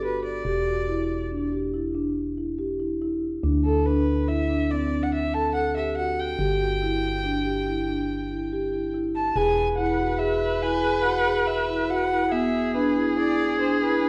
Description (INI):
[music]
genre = contemporary instrumental, chamber music in an uneven meter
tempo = 142 BPM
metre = 7/4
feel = straight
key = unclear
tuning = A4 = 439 Hz
[part]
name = warm violin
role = melody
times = 0.0-14.1 s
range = A4 to A5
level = -31 LUFS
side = equal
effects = none
[part]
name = marimba with soft mallets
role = arpeggios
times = 0.0-14.1 s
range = B3 to A4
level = -27 LUFS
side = equal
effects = none
[part]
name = organ-like FM bass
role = bass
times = 0.0-14.1 s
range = E1 to D2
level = -33 LUFS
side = equal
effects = none
[part]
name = rich viola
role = second line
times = 9.4-14.1 s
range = G#4 to B4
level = -29 LUFS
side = equal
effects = none
[sound]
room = moderate recital hall reverb, RT60 1.3 s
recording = worn, warbling old tape, cassette tape, warbly pitch drift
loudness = -25 LUFS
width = mono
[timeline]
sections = 0.0-9.4 A section; 9.4-14.1 B section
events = none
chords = 0.5 Em7; 3.4 Dsus2; 6.4 G5; 9.4 E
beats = 0.04 | 0.47 0.89 1.32 1.74 2.17 2.59 3.01 | 3.44 3.86 4.29 4.71 5.13 5.56 5.98 | 6.41 6.83 7.25 7.67 8.10 8.52 8.95 | 9.37 9.79 10.21 10.64 11.06 11.48 11.90 | 12.33 12.75 13.17 13.60 14.02